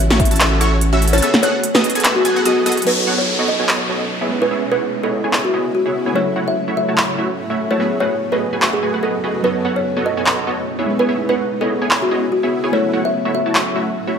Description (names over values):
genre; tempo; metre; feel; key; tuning
future bass; 146 BPM; 4/4; swing 55% on 16ths, half-time; C# minor; A4 = 440 Hz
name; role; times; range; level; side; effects
kalimba; melody; 0.0-13.6 s; F#4 to E5; -20 LUFS; left 1 dB; sidechain pumping, dub echo
shimmering ambient pad; sustained chords; 0.0-14.2 s; F#2 to B4; -28 LUFS; equal; chorus, built-in reverb, sidechain pumping
saturated sub bass; bass; 0.0-1.2 s; A1; -16 LUFS; equal; sidechain pumping
wide unison pluck; arpeggios; 0.1-2.8 s; C#6 to A6; -25 LUFS; equal; sidechain pumping
supersaw stab; riff; 0.1-14.2 s; A3 to A5; -20 LUFS; right 1 dB; analog chorus, vintage 12-bit sampler grit, sidechain pumping, low-pass filter
big-room dance drum kit; drums; 0.1-13.6 s; crash cymbal, handclaps, hi-hat, snare drum; -18 LUFS; equal; overdrive
glassy digital keys; accompaniment; 2.8-14.2 s; F#3 to B4; -25 LUFS; right 2 dB; chorus, sidechain pumping
downlifter; sound effects; 2.9-6.2 s; none; -23 LUFS; equal; none
room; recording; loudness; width
light reverb; none; -15 LUFS; side -7 dB against mid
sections
0.0-2.9 A section; 2.9-14.2 B section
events
drop 0.0-2.9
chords
0.0 A6; 1.2 F#m11; 2.9 B9; 4.3 C#m7; 6.2 A6; 7.8 F#m11; 9.4 B9; 10.9 C#m7; 12.7 A6